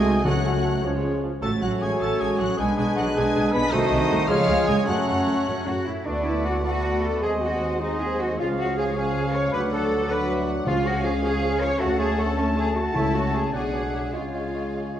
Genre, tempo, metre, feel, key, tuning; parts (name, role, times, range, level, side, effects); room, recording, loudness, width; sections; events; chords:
classical, dramatic, fast romantic movement for symphony orchestra; 104 BPM (dotted quarters); 6/8; straight; F# minor; A4 = 439 Hz
rich symphonic violin section; melody; 0.0-15.0 s; B#4 to B6; -36 LUFS; left 3 dB
clear symphonic violin section; second line; 0.0-15.0 s; B4 to B5; -37 LUFS; left 2 dB
hollow small flute group; second line; 0.0-15.0 s; C#5 to C#6; -33 LUFS; left 3 dB
mellow cor anglais; second line; 0.0-15.0 s; Eb4 to D5; -33 LUFS; right 1 dB
clear symphonic viola section; accompaniment; 0.0-15.0 s; F#3 to A4; -33 LUFS; equal
clear trombone section; sustained chords; 0.0-5.9 s; C#3 to B3; -32 LUFS; right 3 dB
dark French horn section; sustained chords; 0.0-15.0 s; F#3 to G#4; -30 LUFS; left 4 dB
bright trumpet section; stabs; 0.0-15.0 s; B4 to A5; -31 LUFS; right 1 dB
clear symphonic cello section; bass; 0.0-15.0 s; Eb3 to C#5; -28 LUFS; right 2 dB
rich symphonic double bass section; bass; 0.0-15.0 s; A1 to F#2; -29 LUFS; right 2 dB
mellow clarinet; second line; 0.1-15.0 s; C#4 to C#5; -32 LUFS; left 1 dB
mellow bassoon; accompaniment; 0.1-15.0 s; E#3 to A3; -31 LUFS; right 1 dB
timpani; percussion; 0.2-0.8, 10.7-13.5 s; C#3; -30 LUFS; left 1 dB
wet scoring stage reverb, RT60 1.8 s; worn, warbling old tape, cassette tape, warbly pitch drift; -21 LUFS; side -10 dB against mid
0.0-6.1 A section; 6.1-15.0 B section
0.2 F#m/C#; 0.8 C#; 1.4 F#m/A; 2.6 G#dim/B; 3.7 Cdim7; 4.3 C#; 4.9 F#m; 6.1 D6; 7.2 G#7/D#; 8.4 C#; 9.5 Bm/D; 10.7 C#; 11.8 Dmaj7; 12.9 A/C#; 13.5 G#m7b5/B; 14.1 C#